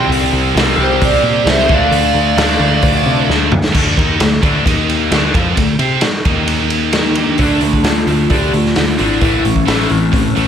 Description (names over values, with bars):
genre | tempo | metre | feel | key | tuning
hard rock | 132 BPM | 4/4 | straight | D minor | A4 = 440 Hz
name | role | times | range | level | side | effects
vibraphone with soft mallets | melody | 0.0-3.3, 6.9-10.5 s | C4 to F5 | -18 LUFS | equal | analog delay
high-gain lead guitar | second line | 0.0-3.3 s | G4 to D5 | -21 LUFS | right 7 dB | distortion, analog delay
distorted electric guitar | riff | 0.0-10.5 s | A2 to C5 | -19 LUFS | left 10 dB | distortion
raw garage guitar | riff | 0.0-3.5, 7.4-10.5 s | A2 to D4 | -21 LUFS | left 2 dB | overdrive, phaser
scooped high-gain guitar | riff | 0.0-10.5 s | A2 to C5 | -18 LUFS | right 11 dB | distortion
overdriven picked electric bass | bass | 0.0-10.5 s | G#1 to C3 | -19 LUFS | equal | none
raw garage drum kit | drums | 0.1-10.5 s | crash cymbal, hi-hat, kick drum, ride cymbal, snare drum, toms | -16 LUFS | equal | none
room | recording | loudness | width
light reverb, small room reverb | none | -11 LUFS | side -8 dB against mid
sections
0.0-3.7 A section; 3.7-7.4 B section; 7.4-10.5 C section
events
drum fill 3.3-3.7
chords
0.0 C5; 1.7 Dm; 3.7 D5; 4.7 Eb5; 5.1 Dm; 6.2 Eb5; 7.4 Dm; 9.2 A